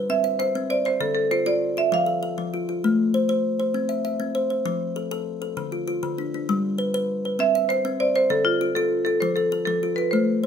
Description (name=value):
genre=southern african traditional, mbira-style interlocking cycle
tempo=132 BPM (dotted quarters)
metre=12/8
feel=straight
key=C major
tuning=A4 = 440 Hz
part: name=kalimba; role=arpeggios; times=0.0-10.5 s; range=D3 to E5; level=-24 LUFS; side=left 2 dB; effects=none
part: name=marimba with medium hard mallets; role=melody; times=0.1-2.8, 7.4-10.5 s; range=F4 to F5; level=-22 LUFS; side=right 2 dB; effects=plate reverb
room=wet studio reverb, RT60 0.6 s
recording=none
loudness=-21 LUFS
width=side -8 dB against mid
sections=0.0-10.5 A section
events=none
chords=0.1 C; 1.0 Dm; 1.9 F; 2.8 Am; 3.7 C; 4.7 F; 5.6 Dm; 6.5 G; 7.4 C; 8.3 Dm; 9.2 F